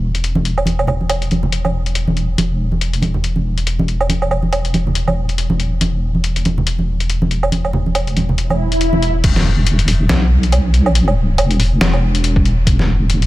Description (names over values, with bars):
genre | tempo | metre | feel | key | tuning
deep dubstep | 140 BPM | 4/4 | swing 57% on 16ths, half-time | unclear | A4 = 438 Hz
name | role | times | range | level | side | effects
deep soft wobble bass | bass | 0.0-13.3 s | E1 to B1 | -16 LUFS | equal | chorus
trip hop sampler-style drum kit | drums | 0.1-13.3 s | crash cymbal, hi-hat, snare drum, woodblock | -20 LUFS | equal | none
congas | percussion | 0.4-9.0 s | none | -20 LUFS | right 1 dB | none
swell | sound effects | 8.5-9.2 s | none | -24 LUFS | equal | none
electronic kick drum | drums | 9.2-9.3, 12.4-12.8 s | none | -15 LUFS | equal | none
room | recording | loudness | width
little or no reverb | none | -14 LUFS | side -16 dB against mid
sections
0.0-9.2 A section; 9.2-13.3 B section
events
swell 8.5-9.2; drop 9.2-13.3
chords
none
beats
0.24 | 0.67 1.10 1.52 1.95 | 2.38 2.81 3.24 3.67 | 4.10 4.53 4.95 5.38 | 5.81 6.24 6.67 7.10 | 7.53 7.95 8.38 8.81 | 9.24 9.67 10.10 10.53 | 10.95 11.38 11.81 12.24 | 12.67 13.10